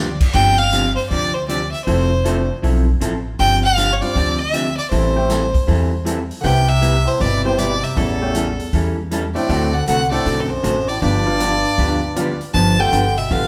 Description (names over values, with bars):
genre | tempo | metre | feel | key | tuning
country, western swing | 157 BPM | 4/4 | swing 65% on 8ths | unclear | A4 = 440 Hz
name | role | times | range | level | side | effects
clear fiddle | melody | 0.0-13.5 s | A4 to A5 | -22 LUFS | equal | none
vintage hollow-body jazz guitar | accompaniment | 0.0-13.5 s | C3 to A4 | -25 LUFS | equal | none
upright bass | bass | 0.0-13.5 s | F1 to E2 | -23 LUFS | equal | none
swinging big-band drum kit | drums | 0.2-13.4 s | crash cymbal, hi-hat, kick drum, snare drum | -26 LUFS | equal | none
bright upright piano | accompaniment | 1.9-12.9 s | F3 to A4 | -28 LUFS | equal | none
warm bass clarinet | second line | 6.4-13.5 s | E2 to F3 | -24 LUFS | equal | none
room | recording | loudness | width
wet stone room reverb, RT60 1.1 s | band playing live in one room | -18 LUFS | mono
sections
0.0-13.5 A section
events
none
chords
0.0 G7sus4; 1.9 Fmaj7; 3.4 G7sus4; 4.9 Am7; 6.4 Cmaj7; 8.0 A7; 9.5 D7; 11.0 G7; 12.5 G9